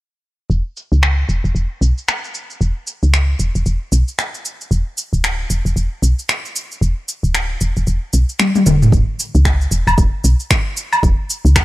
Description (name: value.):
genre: organic downtempo.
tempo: 114 BPM.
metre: 4/4.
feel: swing 60% on 16ths.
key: unclear.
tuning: A4 = 440 Hz.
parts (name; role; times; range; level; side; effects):
woody FM bass; bass; 0.5-11.6 s; D1 to C#2; -14 LUFS; equal; none.
organic electronic drum kit; drums; 0.5-11.6 s; finger snaps, shaker, toms, woodblock; -18 LUFS; equal; low-pass filter on perc, low-pass filter on snare, low-pass filter on toms, low-pass filter on room.
electronic kick drum; drums; 8.9-11.6 s; none; -16 LUFS; equal; none.
room: little or no reverb.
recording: none.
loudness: -14 LUFS.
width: side -18 dB against mid.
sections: 0.5-8.9 A section; 8.9-11.6 B section.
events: filter sweep on drum 0.5-8.9; drum fill 8.4-8.9.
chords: none.